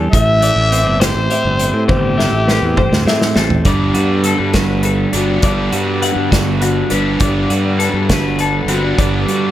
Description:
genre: math rock and midwest emo.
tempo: 68 BPM (dotted quarters).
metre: 6/8.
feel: straight.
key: G major.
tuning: A4 = 435 Hz.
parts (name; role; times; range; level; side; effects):
twelve-string electric guitar; accompaniment; 0.0-9.5 s; G2 to B4; -20 LUFS; right 4 dB; none.
twelve-string electric guitar; arpeggios; 0.0-9.5 s; F#4 to F#5; -21 LUFS; left 5 dB; none.
fuzz fingered electric bass; bass; 0.0-9.5 s; G1 to A2; -18 LUFS; equal; overdrive.
growling trumpet; melody; 0.1-3.3 s; G4 to E5; -18 LUFS; left 2 dB; none.
loose indie drum kit; drums; 0.1-9.4 s; hi-hat, kick drum, snare drum, toms; -17 LUFS; equal; none.
cranked stack guitar; riff; 3.7-9.5 s; G2 to D4; -19 LUFS; right 1 dB; overdrive.
room: light reverb.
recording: none.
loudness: -12 LUFS.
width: side -13 dB against mid.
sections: 0.0-3.7 A section; 3.7-9.5 B section.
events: drum fill 1.9-3.7.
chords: 0.1 Am7; 3.7 Gmaj7.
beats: | 0.12 1.00 | 1.88 2.77 | 3.65 4.54 | 5.43 6.31 | 7.20 8.09 | 8.98.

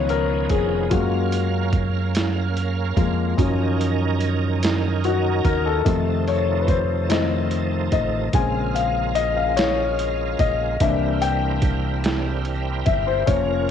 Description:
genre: slow gospel.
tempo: 48 BPM (dotted quarters).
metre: 6/8.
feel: straight.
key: unclear.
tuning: A4 = 440 Hz.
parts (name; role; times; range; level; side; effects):
warm grand piano; accompaniment; 0.0-13.7 s; C3 to Ab5; -23 LUFS; left 9 dB; cassette tape.
bright tonewheel organ; sustained chords; 0.0-13.7 s; C3 to F5; -28 LUFS; right 11 dB; slow rotary speaker, overdrive, chorus vibrato, cassette tape.
fingered electric bass; bass; 0.0-13.7 s; F1 to Gb2; -24 LUFS; right 2 dB; none.
boom bap sampler-style drum kit; drums; 0.1-13.5 s; hi-hat, kick drum, snare drum; -23 LUFS; right 2 dB; overdrive, cassette tape.
room: light reverb.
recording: home recording on cassette.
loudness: -19 LUFS.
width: side -8 dB against mid.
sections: 0.0-13.7 A section.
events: grand piano solo 0.0-13.7.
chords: 0.0 Db9; 0.9 Gbmaj7; 3.4 Ebm7/Gb; 5.9 F7; 8.3 Bbm7; 10.8 C7.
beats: | 0.91 2.15 | 3.39 4.62 | 5.86 7.09 | 8.33 9.57 | 10.80 12.04 | 13.27.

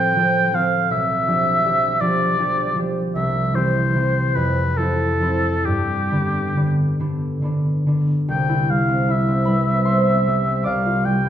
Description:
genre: classical, romantic duo for oboe and harp.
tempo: 44-55 BPM (dotted quarters).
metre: 6/8.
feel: rubato.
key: C major.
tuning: A4 = 440 Hz.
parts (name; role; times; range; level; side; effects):
warm oboe; melody; 0.0-11.3 s; G4 to G5; -20 LUFS; left 1 dB; none.
concert harp; accompaniment; 0.0-11.3 s; B1 to D6; -19 LUFS; equal; none.
room: wet recital hall reverb, RT60 1.7 s.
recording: minimal, uncompressed stereo recording.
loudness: -17 LUFS.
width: side -10 dB against mid.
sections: 0.0-8.3 A section; 8.3-11.3 B section.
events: none.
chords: 0.0 F/A; 0.9 G7/B; 3.2 C; 4.4 Fmaj7; 5.7 G; 8.3 C; 10.7 G7/C.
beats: | 0.91 2.02 | 3.15 4.36 | 5.66 6.99 | 8.29 9.49 | 10.66.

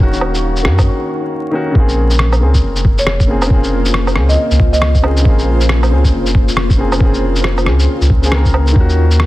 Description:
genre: future garage.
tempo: 137 BPM.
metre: 4/4.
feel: swing 61% on 16ths.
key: unclear.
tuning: A4 = 441 Hz.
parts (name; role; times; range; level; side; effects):
warm upright piano; accompaniment; 0.0-9.3 s; Db3 to Bb4; -18 LUFS; left 1 dB; sidechain pumping, analog delay.
ethereal airy pad; sustained chords; 0.0-9.3 s; Bb3 to Gb5; -23 LUFS; equal; ensemble chorus, built-in reverb, tremolo, sidechain pumping.
soft dub sub bass; bass; 0.0-9.3 s; Eb1 to Gb2; -14 LUFS; equal; sidechain pumping.
electronic kick drum; drums; 0.0-8.9 s; none; -12 LUFS; equal; small room reverb.
wind-like tuned noise texture; texture; 0.0-0.9 s; Db5; -31 LUFS; equal; built-in reverb.
electronic shaker, woodblock and rim click; drums; 0.1-9.3 s; none; -19 LUFS; equal; small room reverb, soft clipping on snare.
marimba with medium mallets; melody; 3.0-5.0 s; Db5 to Eb5; -21 LUFS; equal; analog delay.
room: little or no reverb.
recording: dense, heavily limited modern master, vinyl crackle.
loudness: -10 LUFS.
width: side -17 dB against mid.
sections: 0.0-1.8 A section; 1.8-9.3 B section.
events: break 0.9-1.8.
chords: 0.0 Ebm7; 1.8 Bbm9; 8.8 Ebm7.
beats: | 0.00 0.44 0.88 1.31 | 1.75 2.19 2.63 3.07 | 3.50 3.94 4.38 4.82 | 5.26 5.69 6.13 6.57 | 7.01 7.45 7.88 8.32 | 8.76 9.20.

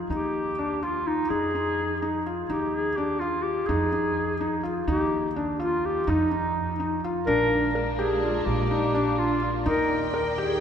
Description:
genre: contemporary instrumental, chamber music in an uneven meter.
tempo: 251 BPM (eighths).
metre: 5/8.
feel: straight.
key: Eb major.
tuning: A4 = 440 Hz.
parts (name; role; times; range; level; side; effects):
felt-muted upright piano; arpeggios; 0.0-10.6 s; D4 to Bb4; -27 LUFS; left 2 dB; none.
upright bass; bass; 0.0-10.6 s; Bb1 to F2; -32 LUFS; right 3 dB; none.
breathy clarinet; melody; 0.1-10.6 s; Eb4 to Bb4; -27 LUFS; equal; none.
warm studio string section; sustained chords; 7.3-10.6 s; Eb3 to G5; -31 LUFS; equal; none.
room: wet cathedral reverb, RT60 4.6 s.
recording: recorded in a church or concert hall.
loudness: -23 LUFS.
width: side -8 dB against mid.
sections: 0.0-7.3 A section; 7.3-10.6 B section.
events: none.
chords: 0.1 Ebmaj7; 1.3 Fm7; 2.5 Ebmaj9; 3.7 Fm7; 4.9 Ebmaj7; 6.1 Ebsus2/F; 7.3 Bb7; 9.7 Ebmaj7.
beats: | 0.11 0.35 0.58 0.82 1.06 | 1.30 1.54 1.78 2.02 2.26 | 2.50 2.74 2.98 3.21 3.45 | 3.69 3.93 4.17 4.41 4.65 | 4.89 5.12 5.36 5.60 5.84 | 6.08 6.32 6.56 6.80 7.04 | 7.28 7.51 7.75 7.99 8.23 | 8.47 8.71 8.95 9.19 9.43 | 9.67 9.91 10.15 10.38.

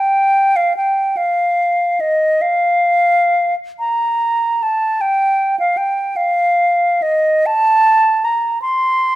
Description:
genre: classical, free, expressive piece for unaccompanied flute.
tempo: 42-53 BPM (dotted quarters).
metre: 6/8.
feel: rubato.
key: unclear.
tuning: A4 = 440 Hz.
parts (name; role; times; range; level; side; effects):
concert flute; solo; 0.0-9.2 s; Eb5 to C6; -13 LUFS; equal; none.
room: moderate recital hall reverb, RT60 1.3 s.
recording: none.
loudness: -13 LUFS.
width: side -15 dB against mid.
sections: 0.0-9.2 A section.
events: none.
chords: none.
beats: | 1.17 2.41 | 3.78 5.02 | 6.16 7.45 | 8.62.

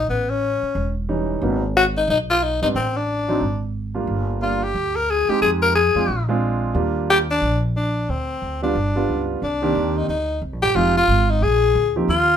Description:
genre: jazz, small-group swing and bop.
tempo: 180 BPM.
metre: 4/4.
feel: swing 61% on 8ths.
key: unclear.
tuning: A4 = 440 Hz.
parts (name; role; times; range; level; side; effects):
growling tenor saxophone; melody; 0.0-12.4 s; Cb4 to Bb4; -19 LUFS; left 2 dB; none.
upright bass; bass; 0.0-12.4 s; E1 to F2; -24 LUFS; right 1 dB; none.
warm grand piano; accompaniment; 1.1-12.1 s; Eb3 to G4; -23 LUFS; right 2 dB; none.
room: moderate studio reverb, RT60 0.5 s.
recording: minimal, uncompressed stereo recording.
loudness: -18 LUFS.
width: side -8 dB against mid.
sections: 0.0-9.4 A section; 9.4-12.4 B section.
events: none.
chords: 0.1 A7#11; 1.4 Abm7; 2.7 Adim; 3.4 Bb7/Ab; 4.1 Gm7; 5.4 Fm7; 6.1 Bb7; 6.7 Ebmaj7; 8.1 Dm7; 8.7 G7; 9.4 Cm9; 10.8 Fm7; 11.4 Bb7.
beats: | 0.08 0.41 0.75 1.08 | 1.41 1.75 2.08 2.41 | 2.75 3.08 3.41 3.75 | 4.08 4.41 4.75 5.08 | 5.41 5.75 6.08 6.41 | 6.75 7.08 7.41 7.75 | 8.08 8.41 8.75 9.08 | 9.41 9.75 10.08 10.42 | 10.75 11.08 11.42 11.75 | 12.09.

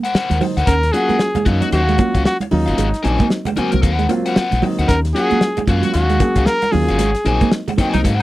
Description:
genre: funk.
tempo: 114 BPM.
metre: 4/4.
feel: swing 60% on 16ths.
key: Eb dorian.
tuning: A4 = 441 Hz.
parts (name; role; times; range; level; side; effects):
biting overdriven guitar; accompaniment; 0.0-8.2 s; Gb4 to Ab5; -22 LUFS; left 4 dB; none.
damped 70s drum kit; drums; 0.0-8.2 s; hi-hat, kick drum, snare drum; -20 LUFS; left 1 dB; none.
fingered electric bass; bass; 0.1-8.2 s; G1 to Ab2; -18 LUFS; equal; none.
congas; percussion; 0.1-8.2 s; none; -28 LUFS; right 4 dB; none.
dark upright piano; stabs; 0.3-8.1 s; Gb3 to C5; -22 LUFS; equal; none.
clean electric guitar; riff; 0.4-8.1 s; Gb3 to Db4; -22 LUFS; right 5 dB; wide subtle chorus.
mellow trumpet; melody; 0.7-7.5 s; Eb4 to Bb4; -19 LUFS; equal; none.
clear baritone saxophone; second line; 7.9-8.0 s; Eb4; -21 LUFS; left 4 dB; none.
room: little or no reverb.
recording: dry, close 1970s-style studio recording.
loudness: -14 LUFS.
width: side -16 dB against mid.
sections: 0.0-8.2 A section.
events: band accent 7.0-8.2.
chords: 0.0 Ab9 (rootless); 0.7 Ebm9; 2.8 Ab9; 4.9 Ebm9; 7.0 Ab9.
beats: 0.15 | 0.67 1.20 1.73 2.25 | 2.78 3.31 3.83 4.36 | 4.88 5.41 5.94 6.47 | 6.99 7.52 8.05.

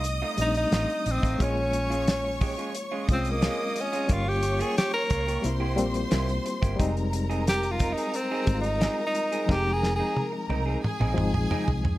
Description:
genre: lush 1970s-style soul.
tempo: 89 BPM.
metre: 4/4.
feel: straight.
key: F minor.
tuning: A4 = 439 Hz.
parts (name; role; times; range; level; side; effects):
warm tenor saxophone; melody; 0.0-10.3 s; Bb3 to Bb4; -28 LUFS; equal; none.
clear studio violin section; second line; 0.0-12.0 s; Ab4 to Eb6; -33 LUFS; left 1 dB; none.
barky reed electric piano; accompaniment; 0.0-12.0 s; F3 to G4; -32 LUFS; left 2 dB; overdrive, fast tremolo.
electric guitar through a small old amp; riff; 0.0-11.9 s; Ab3 to Bb4; -36 LUFS; right 4 dB; none.
vintage muted fingered electric bass; bass; 0.0-12.0 s; F1 to F2; -29 LUFS; equal; none.
damped 70s drum kit; drums; 0.0-12.0 s; hi-hat, kick drum, snare drum, toms; -28 LUFS; equal; none.
room: studio reverb.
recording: none.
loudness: -24 LUFS.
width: side -16 dB against mid.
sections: 0.0-12.0 A section.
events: tenor saxophone solo 0.0-12.0; drum fill 9.5-12.0.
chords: 0.0 F7; 1.4 Bbm7; 4.1 Gm7b5; 5.4 C7; 6.8 Fm7.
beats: 0.04 0.72 | 1.40 2.07 2.75 3.42 | 4.10 4.77 5.45 6.12 | 6.79 7.47 8.14 8.82 | 9.49 10.16 10.84 11.51.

